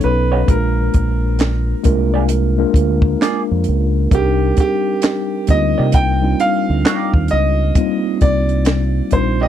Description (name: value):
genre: R&B, neo-soul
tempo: 66 BPM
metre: 4/4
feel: swing 63% on 16ths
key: C minor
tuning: A4 = 440 Hz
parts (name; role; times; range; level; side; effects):
- clear concert grand piano; melody; 0.0-9.5 s; G4 to G5; -21 LUFS; right 2 dB; tape echo
- mellow tine electric piano; accompaniment; 0.0-9.5 s; F#3 to Bb4; -19 LUFS; left 1 dB; slow stereo tremolo
- deep dub fingered electric bass; bass; 0.0-9.5 s; Bb1 to C3; -17 LUFS; equal; none
- compact cocktail drum kit; drums; 0.0-9.4 s; handclaps, hi-hat, kick drum, snare drum; -16 LUFS; equal; none
- electric guitar through a small old amp; second line; 0.3-9.5 s; A3 to D5; -22 LUFS; right 6 dB; wah
room: little or no reverb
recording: dry, close 1970s-style studio recording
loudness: -13 LUFS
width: side -10 dB against mid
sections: 0.0-9.5 A section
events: none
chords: 0.5 Bb7; 4.1 Cm9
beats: | 0.48 1.39 2.30 3.21 | 4.12 5.03 5.93 6.84 | 7.75 8.66